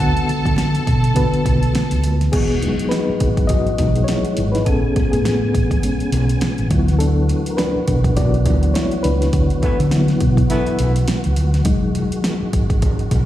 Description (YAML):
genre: lush 1970s-style soul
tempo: 103 BPM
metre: 4/4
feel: swing 58% on 16ths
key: E mixolydian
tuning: A4 = 440 Hz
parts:
  - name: clear studio string section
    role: second line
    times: 0.0-2.0 s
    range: A4 to A5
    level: -24 LUFS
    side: right 1 dB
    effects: slapback echo
  - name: mellow reed electric piano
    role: accompaniment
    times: 0.0-13.3 s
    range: D3 to F#5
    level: -21 LUFS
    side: left 2 dB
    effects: fast tremolo, slapback echo
  - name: hollow-body short-scale fingered electric bass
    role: bass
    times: 0.0-13.3 s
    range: E1 to D3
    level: -18 LUFS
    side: equal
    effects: none
  - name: deep house drum kit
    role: drums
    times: 0.2-13.3 s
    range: crash cymbal, hi-hat, kick drum, snare drum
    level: -20 LUFS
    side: equal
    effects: overdrive
  - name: congas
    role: percussion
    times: 0.3-13.3 s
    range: none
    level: -30 LUFS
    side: right 8 dB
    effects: slapback echo
  - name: percussive tonewheel organ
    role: sustained chords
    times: 2.3-13.3 s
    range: C#3 to G#5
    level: -28 LUFS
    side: right 1 dB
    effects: fast rotary speaker, chorus vibrato
  - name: mellow horn section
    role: stabs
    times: 9.6-10.9 s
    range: E3 to E4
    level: -22 LUFS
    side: left 1 dB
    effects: slapback echo
room: little or no reverb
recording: live gig heard through the venue's PA, recital hall reverb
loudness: -15 LUFS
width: side -13 dB against mid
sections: 0.0-2.3 A section; 2.3-13.3 B section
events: reed electric piano solo 2.3-13.3; band accent 9.3-11.7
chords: 0.0 D69; 2.3 Emaj9; 4.7 Amaj9; 6.7 D69; 11.7 Emaj9